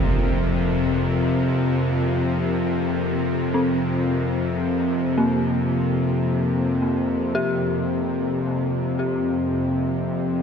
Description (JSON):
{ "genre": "dark ambient drone", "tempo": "free time", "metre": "none", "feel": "none", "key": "unclear", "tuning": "A4 = 440 Hz", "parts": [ { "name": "dark analog pad", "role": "sustained chords", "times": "0.0-10.4 s", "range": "F3 to Bb4", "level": "-30 LUFS", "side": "right 1 dB", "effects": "chorus" }, { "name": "bowed-like drone", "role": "drone", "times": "0.0-10.4 s", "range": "F2 to C3", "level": "-22 LUFS", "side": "left 1 dB", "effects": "built-in reverb" }, { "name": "wind-like tuned noise texture", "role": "texture", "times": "0.0-10.4 s", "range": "Bb3 to Bb4", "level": "-39 LUFS", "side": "equal", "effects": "none" }, { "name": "dark detuned synth bell", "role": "arpeggios", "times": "3.5-10.4 s", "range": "Bb3 to G4", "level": "-26 LUFS", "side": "left 1 dB", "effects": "chorus, tremolo, dub echo" } ], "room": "wet plate reverb, RT60 2.9 s", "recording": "echo-heavy mix", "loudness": "-20 LUFS", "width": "side -7 dB against mid", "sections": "0.0-10.4 A section", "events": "fade-out on analog synth pad 0.0-10.4", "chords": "0.0 Fsus2", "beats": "free time" }